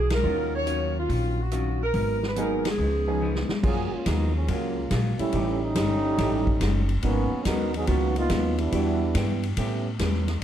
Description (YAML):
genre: jazz, big band swing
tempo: 141 BPM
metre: 4/4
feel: swing 68% on 8ths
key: unclear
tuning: A4 = 440 Hz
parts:
  - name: warm saxophone section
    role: melody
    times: 0.0-3.5 s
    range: F4 to Db5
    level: -28 LUFS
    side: right 1 dB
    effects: none
  - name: vintage hollow-body jazz guitar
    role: accompaniment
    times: 0.0-10.3 s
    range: Ab2 to G#4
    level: -33 LUFS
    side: left 2 dB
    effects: none
  - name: upright bass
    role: bass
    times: 0.0-10.4 s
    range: Gb1 to A2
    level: -27 LUFS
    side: equal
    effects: none
  - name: swinging big-band drum kit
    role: drums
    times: 0.1-10.4 s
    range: crash cymbal, hi-hat, kick drum, ride cymbal, rim click, snare drum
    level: -30 LUFS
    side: left 1 dB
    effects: none
  - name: warm concert grand piano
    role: accompaniment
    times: 0.2-9.8 s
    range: E3 to Bb4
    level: -32 LUFS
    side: right 3 dB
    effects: none
  - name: mellow trombone section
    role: second line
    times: 3.6-10.4 s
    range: Eb3 to Bb4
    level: -27 LUFS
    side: right 1 dB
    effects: none
room: light reverb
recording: dark, warm production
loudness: -23 LUFS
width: side -10 dB against mid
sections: 0.0-3.6 A section; 3.6-10.4 B section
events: band accent 0.0, 2.6; drum fill 3.2-3.6; trombone section solo 3.6-10.4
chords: 0.2 Ebm9; 1.9 Abm7; 2.8 Db9; 3.6 Gbmaj9; 5.3 A7#11; 7.0 Abm11; 8.7 Em7; 9.6 A9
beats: | 0.24 0.67 1.09 1.52 | 1.94 2.37 2.79 3.21 | 3.64 4.06 4.49 4.91 | 5.34 5.76 6.18 6.61 | 7.03 7.46 7.88 8.31 | 8.73 9.15 9.58 10.00 | 10.43